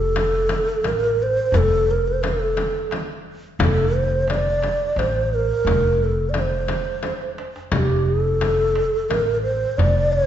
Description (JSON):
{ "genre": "Persian modal ensemble", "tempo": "87 BPM", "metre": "3/4", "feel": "straight", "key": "F dastgah mahur", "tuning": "A4 = 440 Hz", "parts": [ { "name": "breathy mellow low ney", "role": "melody", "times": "0.0-10.3 s", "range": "G4 to D5", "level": "-21 LUFS", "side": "right 1 dB", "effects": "none" }, { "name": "upright bass", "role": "bass", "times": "0.0-10.3 s", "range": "F1 to A1", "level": "-23 LUFS", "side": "equal", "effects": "none" }, { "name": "frame drum", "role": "percussion", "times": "0.2-9.9 s", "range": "none", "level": "-27 LUFS", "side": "left 3 dB", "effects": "none" }, { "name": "tombak", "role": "percussion", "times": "0.2-10.2 s", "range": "none", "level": "-29 LUFS", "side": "right 1 dB", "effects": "none" } ], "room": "wet recital hall reverb, RT60 1.7 s", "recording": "recorded in a church or concert hall, nothing above 7.8 kHz", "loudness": "-18 LUFS", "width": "side -10 dB against mid", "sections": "0.0-10.3 A section", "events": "drum fill 7.0-7.7", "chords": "none", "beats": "0.15 0.84 | 1.53 2.22 2.91 | 3.60 4.28 4.97 | 5.66 6.35 7.04 | 7.72 8.41 9.10 | 9.79" }